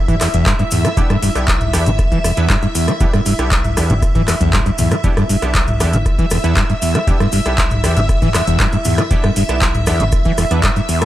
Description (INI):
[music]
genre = acid house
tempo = 118 BPM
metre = 4/4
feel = straight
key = E minor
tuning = A4 = 440 Hz
[part]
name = string machine, full ensemble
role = sustained chords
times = 0.0-11.1 s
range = E5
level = -22 LUFS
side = equal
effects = ensemble chorus, sidechain pumping
[part]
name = band-passed chord stab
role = stabs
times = 0.0-10.6 s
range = B3 to B4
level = -27 LUFS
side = right 2 dB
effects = chorus, cassette tape, tape echo
[part]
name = saturated sub bass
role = bass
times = 0.0-10.5 s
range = E1 to B1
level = -22 LUFS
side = equal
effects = tube saturation, sidechain pumping
[part]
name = overdriven acid bass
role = riff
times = 0.1-11.1 s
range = E2 to G3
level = -17 LUFS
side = equal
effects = distortion, wide subtle chorus, tape echo
[part]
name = booming analog drum machine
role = drums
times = 0.1-11.1 s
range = handclaps, hi-hat, rim click, toms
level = -20 LUFS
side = equal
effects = overdrive
[part]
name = electronic kick drum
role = drums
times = 0.1-10.7 s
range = none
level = -17 LUFS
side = equal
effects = overdrive
[part]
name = cabasa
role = percussion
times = 0.1-11.1 s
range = none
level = -29 LUFS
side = left 3 dB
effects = none
[sound]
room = digital ambience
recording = dry, gritty hardware recording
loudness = -13 LUFS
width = side -14 dB against mid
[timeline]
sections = 0.0-11.1 A section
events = none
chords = 0.0 Em7